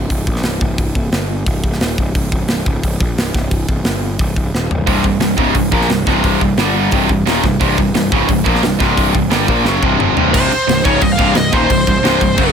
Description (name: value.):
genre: heavy metal.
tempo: 176 BPM.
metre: 4/4.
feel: straight.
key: C phrygian.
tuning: A4 = 440 Hz.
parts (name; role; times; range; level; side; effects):
fuzz picked electric bass; bass; 0.0-12.5 s; C1 to Bb1; -19 LUFS; equal; overdrive.
tight metal drum kit; drums; 0.1-12.5 s; crash cymbal, hi-hat, kick drum, snare drum, toms; -17 LUFS; equal; none.
distorted electric guitar; riff; 4.9-12.5 s; C2 to Bb3; -18 LUFS; left 15 dB; distortion.
tight distorted guitar; riff; 4.9-12.5 s; C2 to Bb3; -16 LUFS; right 14 dB; distortion.
high-gain lead guitar; melody; 10.3-12.5 s; C5 to F5; -16 LUFS; equal; distortion.
room: small room ambience.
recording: none.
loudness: -12 LUFS.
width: side -7 dB against mid.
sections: 0.0-10.3 A section; 10.3-12.5 B section.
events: drum fill 4.5-4.9, 9.7-10.3.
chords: 0.0 Bbsus2/C; 1.1 N.C.; 4.2 C5; 6.6 G5; 6.9 Cm.